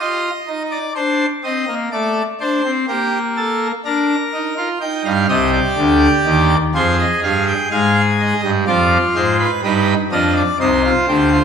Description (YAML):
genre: classical, baroque-style 3-part fugue for pipe organ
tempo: 62 BPM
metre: 4/4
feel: straight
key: C minor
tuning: A4 = 440 Hz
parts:
  - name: pipe organ, full organ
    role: solo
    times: 0.0-11.4 s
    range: C2 to G5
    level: -14 LUFS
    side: equal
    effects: none
room: wet scoring stage reverb, RT60 1.5 s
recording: minimal, uncompressed stereo recording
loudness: -14 LUFS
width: side -7 dB against mid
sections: 0.0-11.4 A section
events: none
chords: 0.0 N.C.; 1.0 D5; 2.9 Gm/Bb; 4.8 Cm; 6.7 Fm; 8.7 G7/F; 10.6 Cm